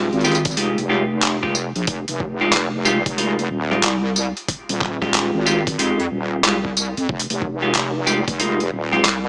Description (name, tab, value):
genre	glitch hop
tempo	92 BPM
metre	4/4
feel	swing 64% on 16ths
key	F minor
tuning	A4 = 439 Hz
part	semi-hollow electric guitar	stabs	0.0-9.0 s	Ab3 to Bb4	-21 LUFS	equal	sidechain pumping, dub echo
part	wobble bass	bass	0.0-9.3 s	Eb1 to F2	-22 LUFS	equal	chorus, tube saturation
part	boom bap sampler-style drum kit	drums	0.1-9.2 s	handclaps, hi-hat, snare drum, tambourine	-20 LUFS	equal	overdrive, studio reverb
part	electronic kick drum	drums	0.5-8.4 s	none	-25 LUFS	equal	overdrive, studio reverb
room	light reverb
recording	small speaker sound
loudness	-17 LUFS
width	side -30 dB against mid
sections	0.0-9.3 A section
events	none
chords	0.0 Fm9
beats	0.57 1.22 | 1.88 2.53 3.18 3.83 | 4.49 5.14 5.79 6.44 | 7.09 7.75 8.40 9.05